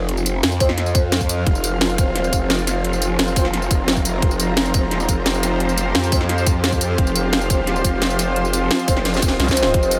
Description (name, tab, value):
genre	dark technical drum and bass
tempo	174 BPM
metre	4/4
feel	straight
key	unclear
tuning	A4 = 444 Hz
part	swarming drone	sustained chords	0.0-10.0 s	F3 to G4	-28 LUFS	equal	built-in reverb, sidechain pumping
part	growl bass	bass	0.0-10.0 s	F1 to F2	-25 LUFS	equal	chorus, overdrive, sidechain pumping
part	granular cloud pad	texture	0.2-10.0 s	F4 to Bb5	-29 LUFS	equal	built-in reverb, sidechain pumping
part	drum and bass drum kit	drums	0.1-10.0 s	hi-hat, snare drum, tambourine	-24 LUFS	equal	overdrive
part	dark brass ensemble	stabs	0.6-10.0 s	C4 to C5	-29 LUFS	equal	none
part	electronic kick drum	drums	0.6-9.8 s	none	-22 LUFS	equal	overdrive
part	growling FM bass	bass	9.4-9.7 s	C2	-24 LUFS	equal	none
room	moderate huge ambient reverb, RT60 7.0 s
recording	dreamy mix soaked in reverb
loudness	-19 LUFS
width	mono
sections	0.0-10.0 A section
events	drum fill 9.1-9.7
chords	0.0 F5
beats	| 0.09 0.43 0.78 1.12 | 1.47 1.81 2.15 2.50 | 2.85 3.19 3.54 3.88 | 4.22 4.57 4.91 5.26 | 5.60 5.95 6.29 6.64 | 6.98 7.33 7.67 8.02 | 8.36 8.71 9.05 9.40 | 9.74